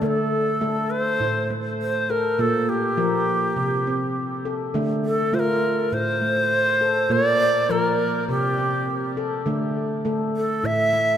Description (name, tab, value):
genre	world meditative, meditative tuned percussion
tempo	102 BPM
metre	4/4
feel	swing 56% on 16ths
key	D minor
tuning	A4 = 440 Hz
part	bright reedy long shakuhachi	melody	0.0-11.2 s	G4 to E5	-22 LUFS	equal	tape echo
part	handpan	arpeggios	0.0-11.2 s	A2 to Bb4	-24 LUFS	left 1 dB	tape echo
room	wet church reverb, RT60 2.8 s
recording	none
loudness	-20 LUFS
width	side -9 dB against mid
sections	0.0-11.2 A section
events	none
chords	0.0 D5; 1.2 Am; 2.4 Bb5; 3.6 C5; 4.7 Dm; 5.9 Am; 7.1 Bb; 8.3 C5; 9.5 D5; 10.6 A5